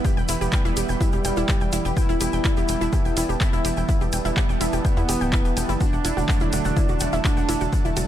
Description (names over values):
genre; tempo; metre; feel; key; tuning
melodic techno; 125 BPM; 4/4; straight; E minor; A4 = 440 Hz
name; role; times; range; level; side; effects
analog synth brass; melody; 0.0-7.9 s; G3 to E4; -29 LUFS; equal; chorus, sidechain pumping, ping-pong delay
lush unison pad; sustained chords; 0.0-8.1 s; E4 to B5; -33 LUFS; left 1 dB; chorus, phaser, sidechain pumping
wide unison pluck; arpeggios; 0.0-8.1 s; E4 to G6; -29 LUFS; equal; sidechain pumping, ping-pong delay
brassy analog pad; stabs; 0.0-8.1 s; D3 to B3; -29 LUFS; right 4 dB; chorus, sidechain pumping, ping-pong delay
electronic kick drum; drums; 0.0-7.8 s; none; -22 LUFS; equal; none
tube shaker; percussion; 0.0-8.1 s; none; -34 LUFS; left 1 dB; none
tight sequencer bass; bass; 0.2-8.0 s; D1 to E2; -27 LUFS; equal; sidechain pumping
punchy analog drum machine; drums; 0.3-8.1 s; handclaps, hi-hat; -30 LUFS; equal; none
room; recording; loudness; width
little or no reverb; none; -19 LUFS; side -11 dB against mid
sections
0.0-8.1 A section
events
none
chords
0.0 Em; 5.8 D/E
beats
| 0.05 0.53 1.01 1.49 | 1.97 2.45 2.93 3.41 | 3.89 4.37 4.85 5.33 | 5.81 6.29 6.77 7.25 | 7.73